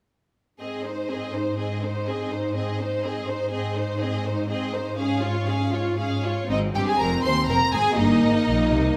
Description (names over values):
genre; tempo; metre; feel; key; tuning
quick classical-period movement for string orchestra; 82 BPM (dotted quarters); 6/8; rubato; Ab major; A4 = 440 Hz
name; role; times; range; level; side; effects
clear studio violin section; melody; 0.6-9.0 s; C5 to C6; -31 LUFS; equal; none
clear studio violin section; second line; 0.6-9.0 s; Eb4 to C5; -31 LUFS; equal; none
rich studio viola section; accompaniment; 0.6-9.0 s; Bb3 to F4; -29 LUFS; equal; none
clear studio cello section; bass; 0.6-9.0 s; Eb2 to C3; -31 LUFS; equal; none
rich studio double bass section; bass; 6.5-9.0 s; F1 to Eb2; -30 LUFS; equal; none
room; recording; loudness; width
wet recital hall reverb, RT60 1.4 s; none; -24 LUFS; mono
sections
0.6-6.5 A section; 6.5-9.0 B section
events
none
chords
0.6 Ab; 5.0 Db/Ab; 6.5 Ab; 8.0 Eb/G